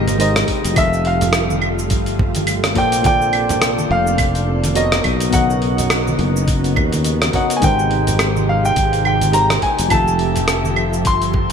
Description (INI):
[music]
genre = sunset chillout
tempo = 105 BPM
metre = 4/4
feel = swing 58% on 16ths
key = unclear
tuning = A4 = 438 Hz
[part]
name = clear baby grand piano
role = melody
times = 0.0-11.5 s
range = Eb5 to C6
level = -20 LUFS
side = equal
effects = ping-pong delay, shimmer reverb
[part]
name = soft electric-piano-like synth keys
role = accompaniment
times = 0.0-11.5 s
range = F3 to F5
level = -22 LUFS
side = moving between left 4 dB and right 5 dB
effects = chorus, auto-pan, ping-pong delay, shimmer reverb
[part]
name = soft string machine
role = sustained chords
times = 0.0-11.5 s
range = C3 to E5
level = -25 LUFS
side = equal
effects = ensemble chorus, shimmer reverb
[part]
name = sustaining fretless electric bass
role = bass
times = 0.0-11.5 s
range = F1 to D#2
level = -20 LUFS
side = equal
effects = tube saturation
[part]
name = dusty soul sampler-style drum kit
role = drums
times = 0.1-11.5 s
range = cabasa, claves, hi-hat, rim click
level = -21 LUFS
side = right 1 dB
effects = gated reverb
[part]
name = congas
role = percussion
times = 0.1-11.5 s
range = none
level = -26 LUFS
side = right 2 dB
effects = none
[part]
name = electronic kick drum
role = drums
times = 0.5-11.5 s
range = none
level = -20 LUFS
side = equal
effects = none
[sound]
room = moderate plate reverb, RT60 2.3 s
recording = bright 1980s-style digital production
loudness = -14 LUFS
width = side -7 dB against mid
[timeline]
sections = 0.0-11.5 A section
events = none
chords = 0.0 Abmaj9; 0.8 Fadd9; 2.8 Bbmaj9; 5.1 Bmaj9; 7.6 Abmaj9; 9.9 Fmaj9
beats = 0.20 | 0.77 1.34 1.91 2.48 | 3.05 3.62 4.20 4.77 | 5.34 5.91 6.48 7.05 | 7.62 8.20 8.77 9.34 | 9.91 10.48 11.05